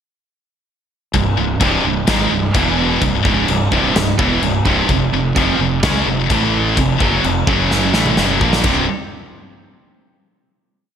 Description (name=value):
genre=heavy metal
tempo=128 BPM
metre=4/4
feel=straight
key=unclear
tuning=A4 = 440 Hz
part: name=heavy high-gain guitar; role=riff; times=1.1-8.8 s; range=C2 to Db4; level=-19 LUFS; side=left 11 dB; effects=distortion
part: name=high-gain distorted guitar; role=riff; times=1.1-8.8 s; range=C2 to Db4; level=-18 LUFS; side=right 7 dB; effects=distortion
part: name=fuzz fingered electric bass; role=bass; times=1.1-8.9 s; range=C1 to Db2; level=-21 LUFS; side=equal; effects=overdrive
part: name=big rock drum kit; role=drums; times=1.1-8.8 s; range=china cymbal, crash cymbal, kick drum, snare drum, toms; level=-19 LUFS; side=left 1 dB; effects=gated reverb
room=light reverb, studio ambience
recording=bright 1980s-style digital production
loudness=-13 LUFS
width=side -8 dB against mid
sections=1.1-8.6 riff; 8.6-10.5 final chord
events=drum fill 7.7-8.6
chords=1.1 C5; 2.5 E5; 3.0 C; 4.9 F5; 6.3 A5; 6.8 F5; 7.5 F#5; 7.9 F#7#9; 8.6 C5